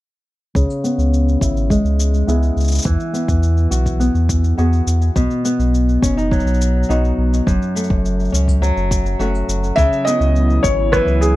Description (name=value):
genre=folktronica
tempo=104 BPM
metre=4/4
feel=straight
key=unclear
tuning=A4 = 440 Hz
part: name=flamenco guitar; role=arpeggios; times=0.5-11.4 s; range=F#2 to G#4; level=-19 LUFS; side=equal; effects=low-pass filter, tape echo
part: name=warm sub bass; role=bass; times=0.6-11.4 s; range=F#1 to E2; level=-16 LUFS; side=equal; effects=none
part: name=electronic kick drum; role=drums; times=0.6-11.0 s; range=none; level=-20 LUFS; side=equal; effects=none
part: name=electronic shaker and rim click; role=drums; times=0.6-11.3 s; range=none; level=-27 LUFS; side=equal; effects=none
part: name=felt-muted upright piano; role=melody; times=9.8-11.4 s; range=G#4 to E5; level=-17 LUFS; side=left 1 dB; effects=tape echo
part: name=warm analog pad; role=sustained chords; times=9.8-11.4 s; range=F#3 to G#4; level=-24 LUFS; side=right 3 dB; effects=chorus, vintage 12-bit sampler grit
room=little or no reverb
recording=dry, close 1970s-style studio recording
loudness=-14 LUFS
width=side -16 dB against mid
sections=0.5-11.4 A section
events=filter sweep on nylon-string guitar 0.5-11.4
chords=0.5 C#m7; 2.9 Eadd9; 5.2 B; 7.5 F#m; 9.8 C#m7